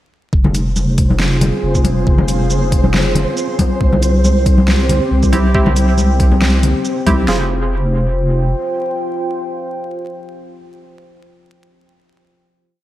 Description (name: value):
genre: deep dubstep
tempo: 138 BPM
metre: 4/4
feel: swing 55% on 16ths, half-time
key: F harmonic minor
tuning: A4 = 440 Hz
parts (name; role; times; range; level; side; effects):
- deep dark ambient pad; sustained chords; 1.0-11.5 s; C4 to G5; -21 LUFS; equal; chorus, built-in reverb
- deep soft wobble bass; bass; 0.3-8.5 s; F1 to C2; -15 LUFS; equal; chorus
- dubstep drum kit; drums; 0.3-7.4 s; kick drum, snare drum; -15 LUFS; equal; overdrive
- flickering grainy texture; texture; 0.8-7.3 s; C4 to C5; -26 LUFS; equal; built-in reverb, analog chorus
- congas; percussion; 0.4-7.2 s; none; -19 LUFS; left 2 dB; dub echo
- dubstep drum kit; drums; 0.5-7.2 s; hi-hat, shaker, snare drum; -22 LUFS; equal; overdrive
- filtered dub chord stab; stabs; 5.3-12.0 s; C4 to Ab4; -22 LUFS; right 2 dB; chorus, dub echo
room: light reverb, digital ambience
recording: vinyl crackle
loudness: -12 LUFS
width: side -14 dB against mid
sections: 0.3-7.3 drop; 7.3-10.8 final chord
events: drop 0.3-7.3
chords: 0.3 Fm; 3.8 C; 7.3 Fm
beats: | 0.33 0.76 1.20 1.63 | 2.07 2.50 2.94 3.37 | 3.81 4.24 4.68 5.11 | 5.55 5.98 6.42 6.85 | 7.29 7.72 8.15 8.59 | 9.02 9.46 9.89 10.33